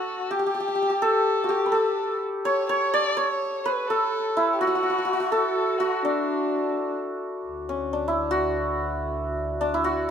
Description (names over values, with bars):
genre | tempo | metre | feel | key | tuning
Persian modal ensemble | 84 BPM (dotted quarters) | 6/8 | straight | D dastgah mahur | A4 = 439 Hz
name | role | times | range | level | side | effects
santur | melody | 0.0-10.1 s | C#4 to D5 | -23 LUFS | equal | none
dark violin | second line | 0.0-7.0 s | D4 to D5 | -29 LUFS | left 4 dB | none
rich double bass | drone | 7.5-10.1 s | D2 | -34 LUFS | equal | none
room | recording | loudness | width
light reverb | minimal, uncompressed stereo recording | -22 LUFS | side -8 dB against mid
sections
0.0-7.5 A section; 7.5-10.1 B section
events
none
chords
none